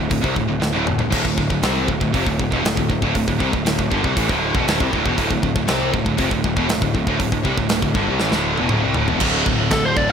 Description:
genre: heavy metal.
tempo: 119 BPM.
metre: 4/4.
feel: straight.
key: unclear.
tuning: A4 = 440 Hz.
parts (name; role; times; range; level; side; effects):
high-gain distorted guitar; riff; 0.0-10.1 s; D2 to C4; -23 LUFS; left 11 dB; distortion.
scooped high-gain guitar; riff; 0.0-10.1 s; D2 to C4; -23 LUFS; right 12 dB; distortion.
fuzz picked electric bass; bass; 0.0-10.1 s; D1 to C2; -24 LUFS; equal; overdrive.
tight metal drum kit; drums; 0.1-10.1 s; china cymbal, crash cymbal, hi-hat, kick drum, snare drum, toms; -22 LUFS; equal; none.
heavy high-gain guitar; riff; 9.2-10.1 s; D2 to D3; -23 LUFS; right 1 dB; distortion.
high-gain lead guitar; melody; 9.7-10.1 s; A4 to D5; -18 LUFS; equal; distortion.
room: small room ambience.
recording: none.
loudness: -17 LUFS.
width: side -7 dB against mid.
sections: 0.0-9.2 A section.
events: drum fill 0.6-1.1, 8.2-9.2.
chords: 0.0 D5.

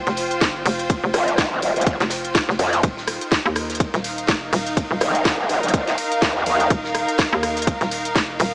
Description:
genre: bass house.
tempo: 124 BPM.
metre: 4/4.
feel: swing 57% on 16ths.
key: unclear.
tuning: A4 = 439 Hz.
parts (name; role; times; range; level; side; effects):
hollow knocking FM bass; bass; 0.0-8.5 s; Eb1 to Eb2; -24 LUFS; equal; tube saturation, sidechain pumping.
rich symphonic string section; texture; 0.0-8.5 s; Eb4 to G5; -25 LUFS; equal; sidechain pumping.
garage drum kit; drums; 0.1-8.5 s; hi-hat, ride cymbal, rim click, snare drum; -23 LUFS; equal; none.
loose indie drum kit; drums; 0.1-8.5 s; hi-hat, ride cymbal, snare drum; -33 LUFS; equal; none.
electronic kick drum; drums; 0.4-8.3 s; none; -22 LUFS; equal; none.
growl bass; bass; 1.1-6.7 s; Eb1 to F2; -19 LUFS; equal; chorus, overdrive, sidechain pumping.
room: light reverb.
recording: small speaker sound.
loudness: -18 LUFS.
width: side -28 dB against mid.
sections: 0.0-8.5 A section.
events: none.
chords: 0.0 F5; 2.8 Eb5.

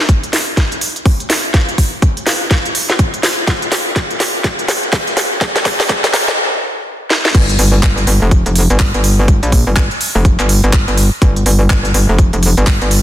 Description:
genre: bass house.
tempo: 124 BPM.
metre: 4/4.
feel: swing 61% on 16ths.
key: G minor.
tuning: A4 = 442 Hz.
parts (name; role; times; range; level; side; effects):
electronic kick drum; drums; 0.1-12.8 s; none; -14 LUFS; equal; none.
garage drum kit; drums; 0.1-13.0 s; crash cymbal, handclaps, hi-hat, snare drum; -15 LUFS; equal; soft clipping on snare.
metallic wobble bass; bass; 7.3-13.0 s; F1 to Bb1; -12 LUFS; equal; chorus, tube saturation, sidechain pumping.
room: light reverb.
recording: dense, heavily limited modern master, high-pass filter.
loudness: -11 LUFS.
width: side -12 dB against mid.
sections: 0.0-7.3 A section; 7.3-13.0 B section.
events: build-up 0.0-7.3; drum fill 0.0-6.4, 7.1; stop 6.4-7.3; drop 7.3-13.0.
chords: none.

